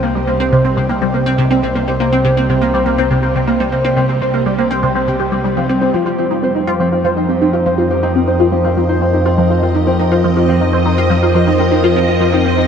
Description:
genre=ambient, sequencer-driven space music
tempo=122 BPM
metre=4/4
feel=straight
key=C minor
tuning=A4 = 440 Hz
part: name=phased string machine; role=sustained chords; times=0.0-12.7 s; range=C3 to Eb5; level=-19 LUFS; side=equal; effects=ensemble chorus, phaser
part: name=concert harp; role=arpeggios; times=0.0-12.7 s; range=C3 to C5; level=-18 LUFS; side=equal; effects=auto-pan, ping-pong delay
part: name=resonant blip pluck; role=riff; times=0.0-12.6 s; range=C3 to G4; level=-16 LUFS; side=equal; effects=phaser, lush chorus, ping-pong delay
part: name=fat analog bass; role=bass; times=0.0-12.7 s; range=C2 to F2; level=-19 LUFS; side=equal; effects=none
room=wet huge ambient reverb, RT60 8.1 s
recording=in a vast, echoing space, cassette tape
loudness=-12 LUFS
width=side -7 dB against mid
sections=0.0-12.7 A section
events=fade-in on string machine 0.0-12.7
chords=0.0 Cm7; 5.9 F7sus4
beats=| 0.04 0.53 1.02 1.51 | 2.00 2.49 2.99 3.48 | 3.97 4.46 4.95 5.45 | 5.94 6.43 6.92 7.41 | 7.90 8.40 8.89 9.38 | 9.87 10.36 10.86 11.35 | 11.84 12.33

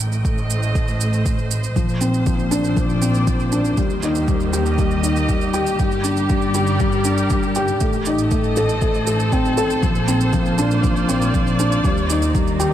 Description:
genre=piano and strings electronica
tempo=119 BPM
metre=4/4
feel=straight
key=unclear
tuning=A4 = 436 Hz
part: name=muted studio string section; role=sustained chords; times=0.0-12.7 s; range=A2 to G5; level=-25 LUFS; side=right 2 dB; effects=none
part: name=dark symphonic double bass section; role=bass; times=0.0-12.7 s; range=G1 to Eb2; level=-23 LUFS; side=right 1 dB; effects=sidechain pumping
part: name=shaker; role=drums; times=0.1-12.7 s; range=none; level=-30 LUFS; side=right 9 dB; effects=overdrive
part: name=electronic kick drum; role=drums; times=0.2-12.4 s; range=none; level=-21 LUFS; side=right 1 dB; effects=overdrive
part: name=felt-muted upright piano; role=riff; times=1.8-12.7 s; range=F3 to A4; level=-20 LUFS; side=left 2 dB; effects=tape echo
room=light reverb, small room ambience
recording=none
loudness=-16 LUFS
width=side -11 dB against mid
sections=0.0-12.7 A section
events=none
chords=0.0 Adim; 1.8 Bbadd9; 3.8 Eb; 5.8 Gm; 7.8 Adim; 9.8 Bbadd9; 11.8 Eb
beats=0.25 0.75 1.25 | 1.76 2.26 2.77 3.27 | 3.77 4.28 4.78 5.29 | 5.79 6.30 6.80 7.30 | 7.81 8.31 8.82 9.32 | 9.83 10.33 10.83 11.34 | 11.84 12.35

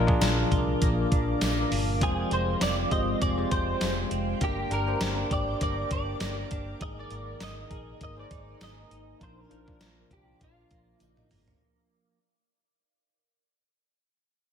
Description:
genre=1980s-style pop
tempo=100 BPM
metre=4/4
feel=swing 55% on 16ths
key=unclear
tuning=A4 = 439 Hz
part: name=bell-like tine electric piano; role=accompaniment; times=0.0-11.6 s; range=G2 to G5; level=-32 LUFS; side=left 3 dB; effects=medium stereo tremolo
part: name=ethereal airy pad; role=sustained chords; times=0.0-11.6 s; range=Ab3 to D6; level=-37 LUFS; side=left 1 dB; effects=ensemble chorus, built-in reverb, phaser
part: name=twelve-string electric guitar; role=riff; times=0.0-12.2 s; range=Eb3 to Ab4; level=-35 LUFS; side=right 4 dB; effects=analog chorus, tape echo
part: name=vintage muted fingered electric bass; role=bass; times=0.0-11.5 s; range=F1 to C2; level=-32 LUFS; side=equal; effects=none
part: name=gated 80s digital drum machine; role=drums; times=0.1-11.6 s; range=hi-hat, kick drum, snare drum, tambourine, toms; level=-29 LUFS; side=equal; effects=gated reverb, gated reverb snare
part: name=tambourine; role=percussion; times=0.2-11.2 s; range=none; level=-46 LUFS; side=left 8 dB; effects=none
part: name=direct-recorded clean electric guitar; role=melody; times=2.0-11.3 s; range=F4 to Eb5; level=-33 LUFS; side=right 1 dB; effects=ensemble chorus
room=light reverb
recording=none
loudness=-25 LUFS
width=side -8 dB against mid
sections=0.0-11.6 A section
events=fade-out 0.0-11.6; drum fill 11.0-11.6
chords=0.0 Bb; 2.0 Fmadd9; 4.4 Gm; 6.8 Absus2; 9.2 Bb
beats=0.21 0.81 1.41 | 2.01 2.61 3.21 3.81 | 4.41 5.01 5.61 6.21 | 6.81 7.41 8.01 8.61 | 9.21 9.81 10.41 11.01

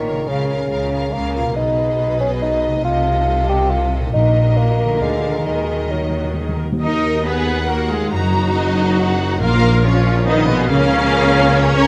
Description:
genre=classical, dramatic, fast romantic movement for symphony orchestra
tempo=139 BPM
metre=3/4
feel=straight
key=Eb minor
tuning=A4 = 442 Hz
part: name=warm symphonic violin section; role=melody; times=0.0-11.9 s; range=Db5 to Bb5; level=-29 LUFS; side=equal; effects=none
part: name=warm symphonic violin section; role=second line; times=0.0-11.9 s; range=Ab3 to Cb5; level=-28 LUFS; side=equal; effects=none
part: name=clear studio viola section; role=accompaniment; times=0.0-11.9 s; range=Cb4 to Eb5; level=-25 LUFS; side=equal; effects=none
part: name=dark bassoon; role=accompaniment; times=0.0-6.4 s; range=Db3 to G4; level=-22 LUFS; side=equal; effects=none
part: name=concert harp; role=arpeggios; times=0.0-11.9 s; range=Gb2 to Bb5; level=-27 LUFS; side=equal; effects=none
part: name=rich studio cello section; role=bass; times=0.0-11.9 s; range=Bb2 to Eb4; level=-25 LUFS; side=equal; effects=none
part: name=rich studio double bass section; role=bass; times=0.0-11.9 s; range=Bb1 to Gb2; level=-24 LUFS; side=equal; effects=none
part: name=timpani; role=percussion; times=4.1-6.8, 9.4-10.0 s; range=Bb2 to Eb3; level=-28 LUFS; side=equal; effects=none
part: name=warm tuba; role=bass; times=6.8-11.9 s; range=Gb1 to Eb2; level=-25 LUFS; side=equal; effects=none
room=moderate scoring stage reverb, RT60 1.6 s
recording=close, detailed microphones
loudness=-17 LUFS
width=mono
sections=0.0-6.8 A section; 6.8-11.9 A section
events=timpani fill 5.5-6.8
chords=0.3 Bbm/Db; 1.6 Abm/Cb; 2.9 F7/C; 4.1 Ebm/Bb; 5.0 Bb7/D; 5.5 Ebm; 8.1 Ebm/Gb; 9.4 Bbm; 10.7 Bbm/Db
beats=| 0.28 0.70 1.13 | 1.57 2.00 2.43 | 2.85 3.28 3.72 | 4.15 4.58 5.02 | 5.47 5.92 6.37 | 6.82 7.25 7.69 | 8.12 8.55 8.98 | 9.41 9.85 10.27 | 10.70 11.12 11.55

